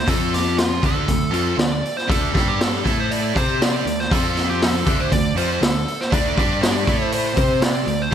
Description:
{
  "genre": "hard rock",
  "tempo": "119 BPM",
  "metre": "4/4",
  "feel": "straight",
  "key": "D minor",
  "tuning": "A4 = 440 Hz",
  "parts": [
    { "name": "nasal lead guitar with a parked wah", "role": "melody", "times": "0.0-8.1 s", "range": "F4 to D5", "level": "-24 LUFS", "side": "right 1 dB", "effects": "overdrive, digital delay" },
    { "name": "cranked stack guitar", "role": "riff", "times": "0.0-8.1 s", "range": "D3 to C5", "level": "-25 LUFS", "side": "right 12 dB", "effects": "overdrive, wide subtle chorus" },
    { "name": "overdriven semi-hollow guitar", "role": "riff", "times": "0.0-8.1 s", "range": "D3 to C5", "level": "-26 LUFS", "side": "left 13 dB", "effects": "ensemble chorus" },
    { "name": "fuzz picked electric bass", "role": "bass", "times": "0.0-8.1 s", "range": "D2 to C3", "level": "-25 LUFS", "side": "equal", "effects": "overdrive" },
    { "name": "raw garage drum kit", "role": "drums", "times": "0.1-8.0 s", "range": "hi-hat, kick drum, snare drum", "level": "-21 LUFS", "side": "equal", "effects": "gated reverb" }
  ],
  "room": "light reverb, small room ambience",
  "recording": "bright 1980s-style digital production",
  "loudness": "-17 LUFS",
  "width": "side -9 dB against mid",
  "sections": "0.0-8.1 A section",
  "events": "none",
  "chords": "0.1 F5; 0.8 Dm; 2.3 G5; 2.9 A5; 3.4 C5; 3.9 D5; 4.1 F5; 4.9 Dm; 6.4 G5; 6.9 A5; 7.4 C5; 7.9 D5"
}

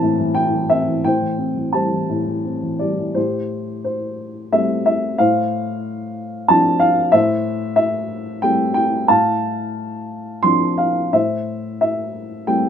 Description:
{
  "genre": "classical, lyrical solo piano",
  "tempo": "83-94 BPM",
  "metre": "3/4",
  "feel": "rubato",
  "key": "A minor",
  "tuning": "A4 = 440 Hz",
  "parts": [
    { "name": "dark upright piano", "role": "solo", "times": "0.0-12.7 s", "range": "A2 to C6", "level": "-17 LUFS", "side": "equal", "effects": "none" }
  ],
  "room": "little or no reverb",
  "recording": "close, detailed microphones",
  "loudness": "-16 LUFS",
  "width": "side -8 dB against mid",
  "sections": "0.0-3.2 A section; 3.2-12.7 A section",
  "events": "none",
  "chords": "0.0 Am; 1.1 Am7; 5.2 Dm7/A; 7.1 Am7; 9.1 Dm7/A; 11.1 Am7"
}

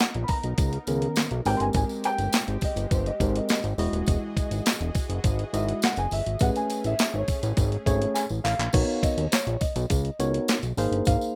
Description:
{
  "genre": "early-eighties boogie funk",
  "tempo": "103 BPM",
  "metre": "4/4",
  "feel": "straight",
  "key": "unclear",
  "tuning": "A4 = 438 Hz",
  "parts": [
    { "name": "felt-muted upright piano", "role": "melody", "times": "0.0-11.4 s", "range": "B#4 to B#5", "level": "-34 LUFS", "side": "equal", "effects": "none" },
    { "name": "lush unison pad", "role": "sustained chords", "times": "0.0-8.7 s", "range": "E3 to D#5", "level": "-42 LUFS", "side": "equal", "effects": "chorus" },
    { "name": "crisp 8-bit digital drum machine", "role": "drums", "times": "0.0-11.2 s", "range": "crash cymbal, handclaps, hi-hat, kick drum, snare drum", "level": "-28 LUFS", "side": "equal", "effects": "none" },
    { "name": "tambourine", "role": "percussion", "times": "0.0-11.3 s", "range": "none", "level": "-41 LUFS", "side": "equal", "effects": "none" },
    { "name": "fat analog bass", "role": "bass", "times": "0.1-11.2 s", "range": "D#1 to D#2", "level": "-30 LUFS", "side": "equal", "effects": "none" },
    { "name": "mellow tine electric piano", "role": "accompaniment", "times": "0.9-11.4 s", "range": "D#3 to D#5", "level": "-31 LUFS", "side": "equal", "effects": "overdrive" }
  ],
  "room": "light reverb",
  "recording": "rough home demo mix",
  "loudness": "-26 LUFS",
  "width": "mono",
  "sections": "0.0-8.7 A section; 8.7-11.4 B section",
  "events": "felt piano solo 0.0-8.7; drum fill 8.2-8.7",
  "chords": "0.0 Bmaj9; 1.5 G#maj9; 3.8 Emaj9; 6.4 Amaj9; 8.7 Bmaj9; 10.8 G#maj9"
}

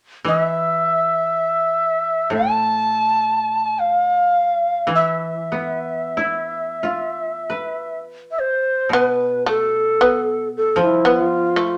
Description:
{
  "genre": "japanese traditional, Japanese chamber music",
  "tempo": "free time",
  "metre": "none",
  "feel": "none",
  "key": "E miyako bushi",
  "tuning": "A4 = 440 Hz",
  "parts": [
    { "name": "koto", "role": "accompaniment", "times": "0.2-11.8 s", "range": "A2 to B4", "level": "-27 LUFS", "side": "equal", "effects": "none" },
    { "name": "breathy bright long shakuhachi", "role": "melody", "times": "0.3-11.8 s", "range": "F4 to A5", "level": "-20 LUFS", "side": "equal", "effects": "none" },
    { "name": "shamisen", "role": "second line", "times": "8.9-11.8 s", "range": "A3 to B3", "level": "-21 LUFS", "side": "equal", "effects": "none" }
  ],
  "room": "moderate studio reverb, RT60 0.7 s",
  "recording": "none",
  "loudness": "-19 LUFS",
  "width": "mono",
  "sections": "0.0-8.9 A section; 8.9-11.8 B section",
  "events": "none",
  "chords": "none"
}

